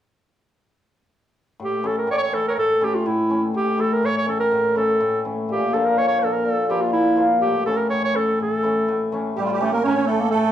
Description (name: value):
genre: klezmer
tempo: 124 BPM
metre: 2/4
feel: straight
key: A phrygian dominant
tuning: A4 = 441 Hz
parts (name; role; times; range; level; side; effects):
- warm clarinet; melody; 1.6-10.5 s; G3 to D5; -20 LUFS; right 1 dB; none
- cimbalom; accompaniment; 1.6-10.5 s; A2 to F4; -22 LUFS; left 2 dB; none
- musette accordion; second line; 9.4-10.5 s; F4 to C#5; -22 LUFS; right 6 dB; none
room: moderate large studio reverb, RT60 0.8 s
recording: band playing live in one room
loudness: -18 LUFS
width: side -10 dB against mid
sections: 1.6-9.4 A section; 9.4-10.5 A section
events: none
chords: 1.6 A; 5.5 Bb5; 7.4 A